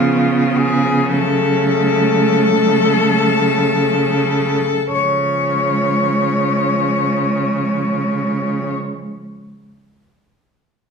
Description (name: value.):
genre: classical, lyrical piece for cello ensemble.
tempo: 26-42 BPM (dotted quarters).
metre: 6/8.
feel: rubato.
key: Db major.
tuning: A4 = 440 Hz.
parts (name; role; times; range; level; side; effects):
clear cello; melody; 0.0-8.7 s; F4 to Db5; -17 LUFS; left 4 dB; none.
rich cello; second line; 0.0-8.7 s; Ab3 to Cb4; -21 LUFS; right 3 dB; none.
rich cello; accompaniment; 0.0-8.7 s; F3 to Gb3; -25 LUFS; left 1 dB; none.
clear cello; bass; 0.0-8.7 s; Db3; -20 LUFS; right 2 dB; none.
room: wet recital hall reverb, RT60 1.3 s.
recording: heard from further back in the room.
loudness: -14 LUFS.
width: side -5 dB against mid.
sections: 0.0-4.9 A section; 4.9-8.8 B section.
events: slowing down 0.0-4.9.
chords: 0.0 Db7; 1.1 Gbm/Db; 4.9 Db.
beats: | 1.10 2.83 | 4.93 6.89.